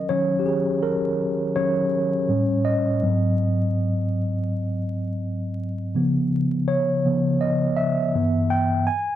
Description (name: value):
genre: hip hop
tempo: 82 BPM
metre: 4/4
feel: swing 56% on 16ths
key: unclear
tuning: A4 = 436 Hz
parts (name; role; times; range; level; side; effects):
- mellow tine electric piano; solo; 0.0-9.2 s; G2 to Ab5; -20 LUFS; equal; medium stereo tremolo, cassette tape
room: wet small room reverb, RT60 0.5 s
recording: dark, warm production, vinyl crackle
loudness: -20 LUFS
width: side -12 dB against mid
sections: 0.1-9.2 A section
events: tine electric piano solo 0.1-9.2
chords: 0.1 Ebm7; 2.3 A7; 3.0 Ab7; 5.9 Db7; 8.1 G6